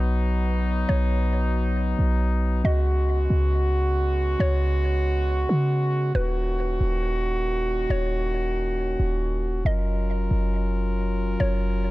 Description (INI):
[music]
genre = hip hop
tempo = 137 BPM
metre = 4/4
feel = half-time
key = F# major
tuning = A4 = 441 Hz
[part]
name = warm brass ensemble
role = sustained chords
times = 0.0-11.9 s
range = A#2 to A#4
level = -26 LUFS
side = left 1 dB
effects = none
[part]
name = clean 808-style bass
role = bass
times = 0.0-11.9 s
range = D#1 to C#3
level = -23 LUFS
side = equal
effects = none
[part]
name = mallet-like synth pluck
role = melody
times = 0.9-11.8 s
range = B4 to D#5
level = -34 LUFS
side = equal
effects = chorus, tape echo
[sound]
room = little or no reverb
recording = dark, warm production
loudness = -21 LUFS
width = side -18 dB against mid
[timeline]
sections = 0.0-11.9 A section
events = none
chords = 0.0 B; 2.6 C#7sus4; 6.1 D#m7; 9.7 F#maj7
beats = 0.02 0.46 | 0.89 1.33 1.77 2.21 | 2.65 3.08 3.52 3.96 | 4.40 4.83 5.27 5.71 | 6.15 6.59 7.03 7.46 | 7.90 8.34 8.78 9.21 | 9.65 10.09 10.53 10.97 | 11.40 11.84